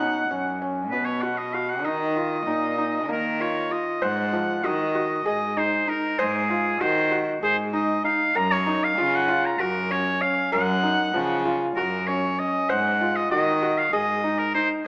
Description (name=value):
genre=contemporary instrumental, chamber music in an uneven meter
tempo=194 BPM (eighths)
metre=7/8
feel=straight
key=Eb minor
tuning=A4 = 440 Hz
part: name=clear oboe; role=melody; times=0.0-14.7 s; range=Ab4 to Bb5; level=-24 LUFS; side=equal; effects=none
part: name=felt-muted upright piano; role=arpeggios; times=0.0-14.8 s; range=F3 to C5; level=-26 LUFS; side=equal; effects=none
part: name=rich cello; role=bass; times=0.0-14.7 s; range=Gb2 to Eb3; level=-28 LUFS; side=equal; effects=none
room=wet recital hall reverb, RT60 1.6 s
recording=small speaker sound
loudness=-21 LUFS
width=side -35 dB against mid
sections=0.0-4.0 A section; 4.0-14.9 B section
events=none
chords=0.0 Bsus2; 1.8 Ebsus2; 4.0 Ab7; 8.4 Gbmaj7; 12.7 Ab7